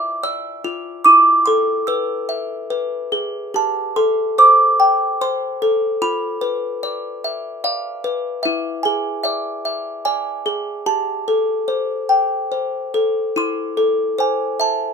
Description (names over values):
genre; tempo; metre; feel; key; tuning
children's music, lullaby; 73 BPM; 3/4; rubato; A minor; A4 = 440 Hz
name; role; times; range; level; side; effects
music box; solo; 0.0-14.9 s; E4 to E6; -16 LUFS; equal; none
room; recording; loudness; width
moderate studio reverb, RT60 0.6 s; minimal, uncompressed stereo recording; -16 LUFS; side -6 dB against mid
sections
0.0-13.4 A section; 13.4-14.9 B section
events
none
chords
0.0 Dmadd9; 1.1 Esus4; 2.7 E; 3.5 Am7; 6.0 Bdim; 8.4 E7; 10.9 Am7; 13.4 Am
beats
0.23 | 1.06 1.88 2.71 | 3.55 4.38 5.21 | 6.02 6.83 7.64 | 8.44 9.25 10.05 | 10.86 11.68 12.52 | 13.36 14.19